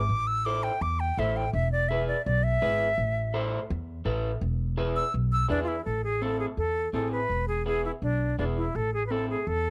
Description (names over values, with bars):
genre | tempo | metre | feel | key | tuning
latin, cumbia | 167 BPM | 4/4 | straight | A harmonic minor | A4 = 439 Hz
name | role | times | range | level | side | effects
concert flute | melody | 0.0-9.7 s | D4 to E6 | -31 LUFS | equal | none
upright bass | bass | 0.0-9.7 s | E1 to E2 | -32 LUFS | equal | none
electric guitar through a small old amp | accompaniment | 0.5-9.4 s | B3 to C5 | -35 LUFS | equal | none
room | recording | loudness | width
small room ambience | dry, close 1970s-style studio recording | -28 LUFS | mono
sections
0.0-5.9 A section; 5.9-9.7 B section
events
flute solo 0.0-5.9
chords
0.1 Am; 1.5 E; 3.0 Am; 4.4 E; 5.9 Am; 7.3 E7; 8.8 Am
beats
| 0.10 0.46 0.82 1.18 | 1.54 1.90 2.26 2.62 | 2.98 3.34 3.70 4.06 | 4.42 4.78 5.14 5.50 | 5.86 6.22 6.58 6.94 | 7.30 7.67 8.03 8.39 | 8.75 9.11 9.47